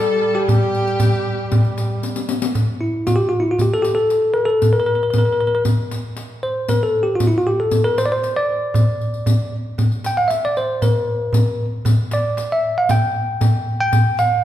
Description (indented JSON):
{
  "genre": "Arabic maqam ensemble",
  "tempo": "116 BPM",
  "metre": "4/4",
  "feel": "straight",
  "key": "G maqam rast",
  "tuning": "A4 = 439 Hz",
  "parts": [
    { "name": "bell-like tine electric piano", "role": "melody", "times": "0.0-14.4 s", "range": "E4 to G5", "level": "-18 LUFS", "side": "equal", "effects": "none" },
    { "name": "dark symphonic violin section", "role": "second line", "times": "0.0-2.0 s", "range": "G4 to A4", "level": "-30 LUFS", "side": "right 1 dB", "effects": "none" },
    { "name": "rich violin", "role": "second line", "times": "0.0-2.0 s", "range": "G4 to A4", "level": "-27 LUFS", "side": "left 1 dB", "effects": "none" },
    { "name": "mellow duduk", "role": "drone", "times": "0.0-2.6 s", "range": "G3", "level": "-27 LUFS", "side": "right 2 dB", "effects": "none" },
    { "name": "darbuka", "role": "percussion", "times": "0.2-14.3 s", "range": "none", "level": "-19 LUFS", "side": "equal", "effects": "none" },
    { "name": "riq", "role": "percussion", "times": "0.5-14.3 s", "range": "none", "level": "-28 LUFS", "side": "left 5 dB", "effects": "none" }
  ],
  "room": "wet recital hall reverb, RT60 1.8 s",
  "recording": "recorded in a church or concert hall",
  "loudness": "-16 LUFS",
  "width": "side -12 dB against mid",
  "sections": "0.0-2.6 A section; 2.6-14.4 B section",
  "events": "drum fill 2.0-2.6",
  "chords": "none",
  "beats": "| 0.49 1.00 1.52 2.04 | 2.55 3.07 3.59 4.10 | 4.62 5.14 5.65 6.17 | 6.69 7.21 7.72 8.24 | 8.76 9.27 9.79 10.31 | 10.83 11.34 11.86 12.38 | 12.89 13.41 13.93"
}